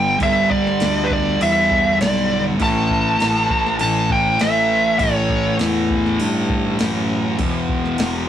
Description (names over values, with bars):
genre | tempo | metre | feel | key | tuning
stoner and doom metal | 100 BPM | 4/4 | straight | unclear | A4 = 444 Hz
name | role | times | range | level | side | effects
fuzz lead guitar | melody | 0.0-5.6 s | B4 to A5 | -18 LUFS | equal | distortion
thick fuzz guitar | riff | 0.0-8.3 s | E2 to A3 | -24 LUFS | left 6 dB | distortion
thick fuzz guitar | riff | 0.0-8.3 s | E2 to A3 | -22 LUFS | right 3 dB | distortion
fuzz fingered electric bass | bass | 0.0-8.3 s | E1 to G2 | -24 LUFS | left 1 dB | overdrive
soft vintage rhythm box | drums | 0.2-8.1 s | crash cymbal, kick drum, snare drum | -26 LUFS | equal | none
room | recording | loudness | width
moderate studio reverb, RT60 0.6 s | rough rehearsal-room recording, tube saturation | -15 LUFS | side -10 dB against mid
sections
0.0-8.3 A section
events
kick and snare drop out 7.1-7.4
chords
0.0 G; 2.6 A5; 7.4 E5